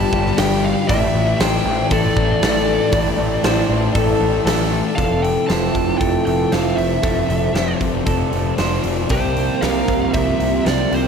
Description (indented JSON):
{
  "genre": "rock, shoegaze and dream pop",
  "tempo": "117 BPM",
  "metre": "4/4",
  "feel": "straight",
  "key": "unclear",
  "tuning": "A4 = 440 Hz",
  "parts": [
    { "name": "fuzz lead guitar", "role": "melody", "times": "0.0-11.1 s", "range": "C5 to A5", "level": "-24 LUFS", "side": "right 1 dB", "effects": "distortion, analog delay" },
    { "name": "evolving wavetable pad", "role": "sustained chords", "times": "0.0-11.1 s", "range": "F3 to B5", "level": "-27 LUFS", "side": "right 4 dB", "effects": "chorus, built-in reverb" },
    { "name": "electric guitar through a small old amp", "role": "arpeggios", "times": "0.0-11.1 s", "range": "G4 to D5", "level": "-24 LUFS", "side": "left 4 dB", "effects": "analog chorus, analog delay" },
    { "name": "electric guitar through a small old amp", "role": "riff", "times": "0.0-11.1 s", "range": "A2 to G4", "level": "-25 LUFS", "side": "right 11 dB", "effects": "reverse reverb" },
    { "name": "thick fuzz guitar", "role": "riff", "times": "0.0-11.1 s", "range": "F2 to C4", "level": "-22 LUFS", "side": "left 8 dB", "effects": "distortion, wide subtle chorus" },
    { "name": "fuzz picked electric bass", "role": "bass", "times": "0.0-11.1 s", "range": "F1 to C2", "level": "-23 LUFS", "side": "right 1 dB", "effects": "overdrive" },
    { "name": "big rock drum kit", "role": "drums", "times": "0.1-11.0 s", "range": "hi-hat, kick drum, snare drum", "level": "-22 LUFS", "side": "right 1 dB", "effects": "none" }
  ],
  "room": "light reverb, small room ambience",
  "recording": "none",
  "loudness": "-15 LUFS",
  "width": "side -6 dB against mid",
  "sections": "0.0-5.0 A section; 5.0-11.1 B section",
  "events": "none",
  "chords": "0.0 G7; 0.9 A7sus4; 5.0 Fmaj7; 9.1 C7sus4"
}